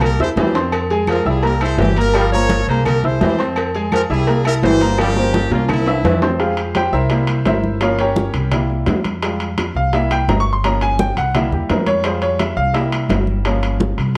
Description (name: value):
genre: latin, salsa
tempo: 170 BPM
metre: 4/4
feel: straight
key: F harmonic minor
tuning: A4 = 439 Hz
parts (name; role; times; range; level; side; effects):
- brilliant horn section; melody; 0.0-6.2 s; C4 to Db5; -24 LUFS; equal; none
- bright grand piano; accompaniment; 0.0-14.0 s; F3 to E6; -22 LUFS; equal; none
- upright bass; bass; 0.0-14.2 s; G1 to F2; -22 LUFS; equal; none
- agogo bells and timbales; percussion; 0.0-14.2 s; none; -26 LUFS; equal; none
- claves; percussion; 0.0-5.9 s; none; -36 LUFS; equal; none
- congas; percussion; 0.0-14.2 s; none; -27 LUFS; equal; none
- cowbell and bongos; percussion; 0.0-14.2 s; none; -28 LUFS; equal; none
- mellow trombone section; second line; 0.4-6.2 s; E3 to G3; -23 LUFS; equal; none
room: moderate large studio reverb, RT60 0.9 s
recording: worn, warbling old tape, cassette tape, warbly pitch drift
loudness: -17 LUFS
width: mono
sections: 0.0-6.4 A section; 6.4-14.2 B section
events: drum fill 0.0-0.7, 5.0-6.4; grand piano solo 6.4-14.2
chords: 0.0 C7; 0.7 Fmadd9; 1.4 C7; 2.1 Gm7b5; 2.9 C7; 3.6 Fmadd9; 4.3 C7; 5.0 Gm7b5; 5.7 C7; 6.4 Fmadd9; 7.1 C7; 7.8 Gm7b5; 8.5 C7; 9.2 Fmadd9; 9.9 C7; 10.6 Gm7b5; 11.3 C7; 12.0 Fmadd9; 12.8 C7; 13.5 Gm7b5